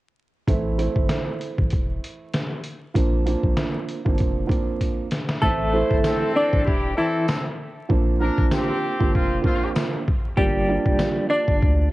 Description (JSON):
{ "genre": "hip hop, boom-bap hip-hop", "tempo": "97 BPM", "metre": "4/4", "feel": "swing 55% on 16ths", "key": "unclear", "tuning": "A4 = 439 Hz", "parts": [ { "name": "dark upright piano", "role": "accompaniment", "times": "0.5-11.9 s", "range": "E3 to E4", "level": "-26 LUFS", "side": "right 4 dB", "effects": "high-pass filter, low-pass filter, cassette tape" }, { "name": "warm sub bass", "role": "bass", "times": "0.5-11.9 s", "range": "E1 to D2", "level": "-25 LUFS", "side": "equal", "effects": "none" }, { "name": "trip hop sampler-style drum kit", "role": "drums", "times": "0.5-11.8 s", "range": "hi-hat, kick drum, snare drum", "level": "-23 LUFS", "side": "equal", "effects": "cassette tape" }, { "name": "semi-hollow electric guitar", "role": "melody", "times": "5.4-11.9 s", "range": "E3 to D5", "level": "-22 LUFS", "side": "left 1 dB", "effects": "tremolo, high-pass filter, low-pass filter, cassette tape" }, { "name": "warm trumpet section", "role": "stabs", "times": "5.7-9.7 s", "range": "G3 to C5", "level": "-27 LUFS", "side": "left 1 dB", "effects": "high-pass filter, low-pass filter, cassette tape, tape echo" }, { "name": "tambourine", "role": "percussion", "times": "6.0-11.1 s", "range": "none", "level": "-46 LUFS", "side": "left 9 dB", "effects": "none" } ], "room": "studio ambience", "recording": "home recording on cassette, vinyl crackle, nothing above 10.4 kHz", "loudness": "-20 LUFS", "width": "side -18 dB against mid", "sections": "0.5-5.4 A section; 5.4-11.9 B section", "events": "drum fill 4.8-5.4; hi-hats muted 5.4-11.9", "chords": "0.5 Am; 3.0 Bbadd9; 5.4 Am; 7.9 Bbadd9; 10.4 Gm7", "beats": "| 0.48 1.10 1.72 2.33 | 2.95 3.57 4.19 4.81 | 5.43 6.04 6.66 7.28 | 7.90 8.52 9.14 9.76 | 10.37 10.99 11.61" }